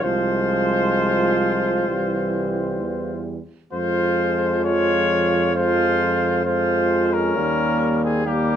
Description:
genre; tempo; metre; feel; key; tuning
classical, brass quintet; 66 BPM; 4/4; straight; F minor; A4 = 441 Hz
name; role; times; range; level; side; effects
mellow trumpet; melody; 0.0-8.6 s; G4 to Db5; -22 LUFS; left 5 dB; none
mellow trumpet; second line; 0.0-8.6 s; Bb3 to F4; -26 LUFS; right 7 dB; none
clear trombone; accompaniment; 0.0-8.6 s; E3 to G3; -26 LUFS; right 3 dB; none
warm French horn; accompaniment; 0.0-8.6 s; G3 to Bb3; -27 LUFS; left 4 dB; none
clear tuba; bass; 0.0-8.6 s; C2 to F2; -25 LUFS; right 4 dB; none
room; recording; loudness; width
moderate large studio reverb, RT60 0.9 s; none; -18 LUFS; side -9 dB against mid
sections
0.0-8.6 A section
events
none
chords
0.0 Fm/C; 1.9 C; 3.7 Fm; 7.4 Eb

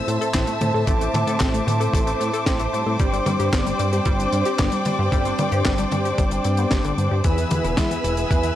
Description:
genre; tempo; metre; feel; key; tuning
italo disco; 113 BPM; 4/4; straight; A minor; A4 = 440 Hz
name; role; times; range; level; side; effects
rich studio string section; sustained chords; 0.0-8.6 s; B4 to E6; -25 LUFS; equal; none
mellow synth brass; stabs; 0.0-8.6 s; A2 to C5; -27 LUFS; right 1 dB; chorus, analog delay
chorused synth bass; bass; 0.0-8.5 s; E1 to A2; -24 LUFS; equal; none
analog pluck; arpeggios; 0.1-8.5 s; D3 to A4; -28 LUFS; left 3 dB; chorus, analog delay
tight funk drum kit; drums; 0.1-8.5 s; handclaps, hi-hat, snare drum, toms; -28 LUFS; left 1 dB; none
electronic kick drum; drums; 0.3-8.4 s; none; -22 LUFS; equal; none
room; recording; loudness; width
light reverb, studio reverb; dry, gritty hardware recording, cassette tape; -18 LUFS; side -12 dB against mid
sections
0.0-8.6 A section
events
none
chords
0.0 Am; 3.0 Gsus4; 7.2 E

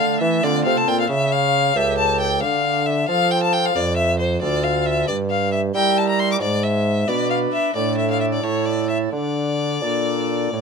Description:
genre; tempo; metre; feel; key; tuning
classical, baroque-style sonata movement with continuo; 90 BPM (dotted quarters); 12/8; straight; D minor; A4 = 440 Hz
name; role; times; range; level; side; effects
rich violin; melody; 0.0-10.6 s; C5 to D6; -21 LUFS; left 4 dB; none
pipe organ, principal chorus; accompaniment; 0.0-10.6 s; C#2 to B4; -23 LUFS; right 2 dB; none
mellow bassoon; bass; 0.0-10.6 s; C#2 to G3; -23 LUFS; right 2 dB; none
room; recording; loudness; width
light reverb; close, detailed microphones; -17 LUFS; side -5 dB against mid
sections
0.0-10.6 A section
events
none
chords
0.0 F; 1.1 A7/C#; 2.4 Dm; 5.1 Edim/G; 6.4 G#dim; 7.8 D5/A; 8.4 A5; 9.1 D5

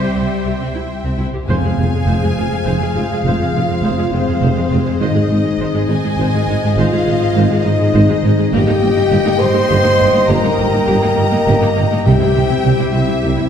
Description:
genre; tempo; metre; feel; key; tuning
cinematic, epic orchestral film score; 68 BPM (dotted quarters); 6/8; straight; F minor; A4 = 439 Hz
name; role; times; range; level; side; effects
rich symphonic violin section; melody; 0.0-13.5 s; G4 to F5; -28 LUFS; left 4 dB; none
warm symphonic violin section; second line; 0.0-13.5 s; C5 to C6; -24 LUFS; left 2 dB; none
rich symphonic viola section; accompaniment; 0.0-13.4 s; G3 to C5; -22 LUFS; equal; none
dark woodwind section; sustained chords; 0.0-13.5 s; C4 to G5; -24 LUFS; left 1 dB; none
mellow French horn section; sustained chords; 0.0-13.5 s; C4 to E5; -19 LUFS; left 2 dB; none
clear symphonic double bass section; bass; 0.0-13.3 s; F1 to C2; -20 LUFS; right 1 dB; none
rich symphonic cello section; bass; 0.0-13.4 s; F2 to G3; -21 LUFS; right 1 dB; none
mellow tuba; bass; 1.5-13.3 s; F1 to C2; -20 LUFS; right 1 dB; none
timpani; percussion; 1.5-2.3, 12.1-12.9 s; F2 to C3; -20 LUFS; equal; none
room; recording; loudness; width
wet scoring stage reverb, RT60 2.1 s; heard from further back in the room; -12 LUFS; side -8 dB against mid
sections
0.0-1.5 A section; 1.5-13.5 B section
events
none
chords
0.0 C; 1.5 Fm; 5.0 Ab; 8.5 Eb/G; 12.1 C

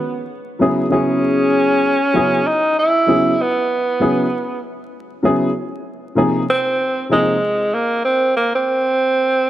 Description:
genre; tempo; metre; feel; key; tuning
hip hop; 97 BPM; 4/4; swing 63% on 16ths; unclear; A4 = 440 Hz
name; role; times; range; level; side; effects
breathy tenor saxophone; melody; 0.0-9.5 s; Ab3 to Fb4; -16 LUFS; right 1 dB; none
dark upright piano; accompaniment; 0.6-7.3 s; C3 to Ab4; -18 LUFS; left 1 dB; none
room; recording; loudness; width
moderate plate reverb, RT60 3.6 s; dark, warm production, vinyl crackle; -14 LUFS; side -13 dB against mid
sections
0.0-9.5 A section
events
none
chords
0.0 Abm7; 6.2 Fm7

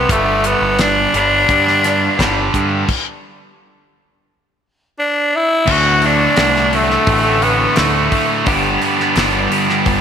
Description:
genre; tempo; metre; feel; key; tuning
classic rock; 86 BPM; 4/4; straight; unclear; A4 = 439 Hz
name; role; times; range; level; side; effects
growling tenor saxophone; melody; 0.0-8.3 s; A3 to F#4; -15 LUFS; left 1 dB; slapback echo
sludgy distorted guitar; riff; 0.0-10.0 s; D2 to G4; -17 LUFS; right 1 dB; overdrive, slapback echo
growling picked electric bass; bass; 0.0-10.0 s; G1 to G2; -21 LUFS; equal; overdrive
damped 70s drum kit; drums; 0.1-10.0 s; crash cymbal, hi-hat, kick drum, snare drum; -20 LUFS; left 1 dB; none
crunchy overdriven guitar; riff; 5.7-10.0 s; D2 to G3; -20 LUFS; equal; slapback echo
group handclap; percussion; 6.4-9.3 s; none; barely audible; none; none
room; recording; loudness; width
moderate lush hall reverb, RT60 2.0 s; big arena sound; -12 LUFS; side -8 dB against mid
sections
0.0-5.7 A section; 5.7-10.0 B section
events
stop 2.9-5.7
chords
0.1 G5; 5.7 D; 8.5 G

